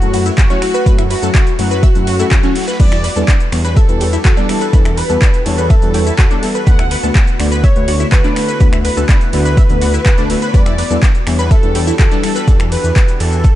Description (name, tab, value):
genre	progressive house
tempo	124 BPM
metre	4/4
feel	straight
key	E dorian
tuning	A4 = 440 Hz
part	warm velvety synth lead	melody	0.0-13.6 s	F#4 to F#5	-21 LUFS	left 1 dB	chorus, ping-pong delay
part	rich chamber violin section	second line	0.0-12.6 s	F#4 to F#5	-28 LUFS	right 1 dB	sidechain pumping, ping-pong delay
part	lush unison pad	sustained chords	0.0-13.6 s	D3 to G4	-26 LUFS	equal	chorus, sidechain pumping
part	deep mellow chord stab	stabs	0.0-12.3 s	D3 to D5	-20 LUFS	left 2 dB	chorus, sidechain pumping, ping-pong delay
part	dark detuned saw bass	bass	0.0-13.5 s	D1 to F#2	-18 LUFS	equal	sidechain pumping
part	deep house drum kit	drums	0.0-13.5 s	crash cymbal, finger snaps, handclaps, hi-hat, ride cymbal, shaker	-22 LUFS	equal	overdrive
part	tight sequenced synth	arpeggios	0.1-12.5 s	C#4 to E6	-23 LUFS	equal	chorus, phaser, sidechain pumping, ping-pong delay
part	crunchy breakbeat drum kit	drums	0.1-13.6 s	hi-hat, snare drum	-34 LUFS	equal	none
part	electronic kick drum	drums	0.4-13.5 s	none	-11 LUFS	equal	overdrive
room	digital ambience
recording	dark, warm production, nothing above 10.8 kHz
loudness	-10 LUFS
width	side -14 dB against mid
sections	0.0-13.6 A section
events	none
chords	0.0 F#m7; 2.8 Em7; 6.7 D6; 10.5 Em7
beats	0.38 | 0.86 1.35 1.83 2.31 | 2.80 3.28 3.77 4.25 | 4.73 5.22 5.70 6.19 | 6.67 7.15 7.64 8.12 | 8.61 9.09 9.57 10.06 | 10.54 11.03 11.51 11.99 | 12.48 12.96 13.44